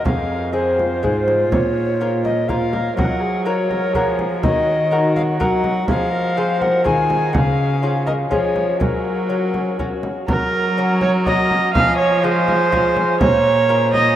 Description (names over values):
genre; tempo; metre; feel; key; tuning
classical, renaissance-style consort dance; 123 BPM; 3/4; straight; unclear; A4 = 440 Hz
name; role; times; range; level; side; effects
alto recorder; melody; 0.0-14.2 s; Bb4 to Bb5; -22 LUFS; left 2 dB; none
warm viola; second line; 0.0-14.2 s; F4 to F5; -20 LUFS; right 3 dB; none
lute; accompaniment; 0.1-14.2 s; F2 to Gb5; -23 LUFS; left 2 dB; none
rich cello; bass; 0.1-14.2 s; F2 to Gb3; -22 LUFS; right 1 dB; none
frame drum; percussion; 0.1-14.2 s; none; -24 LUFS; equal; none
room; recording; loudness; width
wet huge ambient reverb, RT60 9.1 s; in a vast, echoing space; -15 LUFS; side -11 dB against mid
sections
0.0-10.3 A section; 10.3-14.2 A section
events
none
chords
0.1 Fm; 1.5 Bbm; 3.0 Gb; 4.4 Ebm; 5.9 Fm; 7.3 Db; 8.8 Gb; 11.7 Fm; 13.2 Bbm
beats
| 0.05 0.54 1.03 | 1.52 2.00 2.49 | 2.98 3.46 3.95 | 4.43 4.92 5.41 | 5.89 6.37 6.86 | 7.34 7.83 8.32 | 8.81 9.30 9.79 | 10.28 10.77 11.26 | 11.74 12.23 12.72 | 13.21 13.70